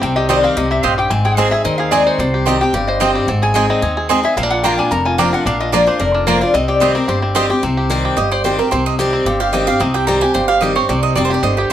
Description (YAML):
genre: bluegrass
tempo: 221 BPM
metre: 4/4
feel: straight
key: C minor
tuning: A4 = 439 Hz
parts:
  - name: bluegrass banjo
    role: melody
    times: 0.0-11.7 s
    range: G3 to C5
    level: -20 LUFS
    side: right 1 dB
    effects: none
  - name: lap resonator guitar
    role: melody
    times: 0.0-7.2 s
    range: F4 to Bb5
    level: -18 LUFS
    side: left 2 dB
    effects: none
  - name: picked steel-string acoustic guitar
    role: accompaniment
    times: 0.0-11.7 s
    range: F2 to Ab4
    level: -18 LUFS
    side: left 2 dB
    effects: none
  - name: upright bass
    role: bass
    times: 0.0-11.7 s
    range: F1 to Eb2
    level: -22 LUFS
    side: equal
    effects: none
  - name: mandolin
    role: stabs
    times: 0.3-11.7 s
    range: Bb3 to Bb5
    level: -18 LUFS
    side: right 6 dB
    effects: none
room: moderate studio reverb, RT60 0.6 s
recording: none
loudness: -13 LUFS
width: side -11 dB against mid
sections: 0.0-7.6 A section; 7.6-11.7 A section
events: resonator guitar played with a steel bar solo 0.0-7.6; mandolin solo 7.6-11.7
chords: 0.0 Cm; 1.1 Ab; 2.2 Cm; 3.3 Ab; 4.4 Bb; 6.5 Cm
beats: | 0.02 0.29 0.56 0.83 | 1.11 1.38 1.65 1.92 | 2.19 2.47 2.74 3.01 | 3.28 3.55 3.83 4.10 | 4.37 4.64 4.91 5.18 | 5.46 5.73 6.00 6.27 | 6.54 6.82 7.09 7.36 | 7.63 7.90 8.18 8.45 | 8.72 8.99 9.26 9.53 | 9.81 10.08 10.35 10.62 | 10.89 11.17 11.44 11.71